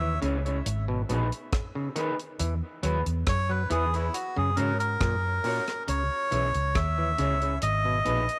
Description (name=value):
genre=roots reggae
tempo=69 BPM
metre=4/4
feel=straight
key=unclear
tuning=A4 = 441 Hz
part: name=melodica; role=melody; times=0.0-8.4 s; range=E4 to E5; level=-31 LUFS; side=equal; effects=tape echo
part: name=overdriven clav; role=arpeggios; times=0.0-8.2 s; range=A#2 to F#3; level=-37 LUFS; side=equal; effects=none
part: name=vintage muted fingered electric bass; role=bass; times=0.0-8.3 s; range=G#1 to G#2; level=-31 LUFS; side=equal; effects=none
part: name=electric guitar at the edge of break-up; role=accompaniment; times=0.2-8.2 s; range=B3 to C#5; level=-37 LUFS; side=equal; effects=tape echo
part: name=deep reggae drum kit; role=drums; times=0.2-8.4 s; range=hi-hat, kick drum, rim click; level=-34 LUFS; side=equal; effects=none
room=light reverb, studio reverb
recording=none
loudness=-28 LUFS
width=mono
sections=0.0-5.9 A section; 5.9-8.4 B section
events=melodica solo 0.0-5.9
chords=0.0 C#m; 0.7 G#m; 2.4 E; 4.1 F#; 5.9 C#m; 7.6 G#m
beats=0.66 1.53 | 2.40 3.27 4.14 5.01 | 5.88 6.75 7.62